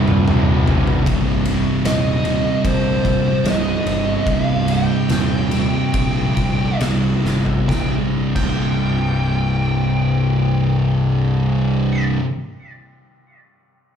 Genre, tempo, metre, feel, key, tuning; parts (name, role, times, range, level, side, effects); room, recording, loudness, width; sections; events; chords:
stoner and doom metal; 67-76 BPM; 4/4; straight; C minor; A4 = 440 Hz
thick fuzz guitar; riff; 0.0-12.2 s; C2 to C3; -21 LUFS; left 7 dB; distortion
thick fuzz guitar; riff; 0.0-12.2 s; C2 to C3; -20 LUFS; right 6 dB; distortion, slapback echo
tight distorted guitar; riff; 0.0-1.0 s; C2 to C3; -26 LUFS; left 1 dB; distortion, slapback echo
fuzz picked electric bass; bass; 0.0-12.2 s; C1 to Bb1; -23 LUFS; equal; overdrive
oversized low-tuned drum kit; drums; 0.1-8.6 s; crash cymbal, kick drum, ride cymbal, snare drum, toms; -23 LUFS; equal
fuzz lead guitar; melody; 1.9-12.0 s; C5 to G5; -26 LUFS; equal; wah, distortion, slapback echo, analog delay
studio reverb; live gig heard through the venue's PA, club reverb; -16 LUFS; side -8 dB against mid
0.0-1.1 A section; 1.1-7.7 B section; 7.7-11.3 C section
drum fill 0.0-1.1, 7.2-7.7; slowing down 1.1-7.7
0.0 Cm; 7.7 C5